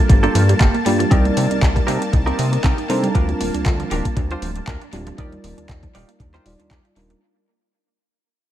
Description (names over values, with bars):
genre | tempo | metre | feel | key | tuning
nu-disco, nu disco | 118 BPM | 4/4 | swing 54% on 16ths | unclear | A4 = 440 Hz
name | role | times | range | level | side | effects
mellow reed electric piano | accompaniment | 0.0-7.2 s | G3 to D5 | -24 LUFS | right 1 dB | sidechain pumping, tape echo
lush unison pad | sustained chords | 0.0-7.2 s | Bb3 to A5 | -27 LUFS | left 2 dB | chorus, phaser, sidechain pumping
wide unison pluck | arpeggios | 0.0-7.1 s | F3 to G4 | -28 LUFS | right 4 dB | sidechain pumping, tape echo
direct-recorded clean electric guitar | riff | 0.1-7.1 s | Bb3 to Bb5 | -26 LUFS | right 2 dB | wide subtle chorus, tape echo
chorused synth bass | bass | 0.1-7.2 s | D1 to C3 | -21 LUFS | equal | none
electronic kick drum | drums | 0.1-6.8 s | none | -16 LUFS | equal | studio reverb
pop drum kit | drums | 0.1-7.2 s | handclaps, hi-hat | -28 LUFS | equal | studio reverb, tape echo
room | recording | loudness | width
little or no reverb | echo-heavy mix | -15 LUFS | side -12 dB against mid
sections
0.0-7.2 A section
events
drop 0.0-7.2; fade-out 0.0-7.2; clean electric guitar fill 2.1-3.1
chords
0.0 Gm9; 1.1 Cm7; 3.1 Bb6/D; 5.2 Ebmaj9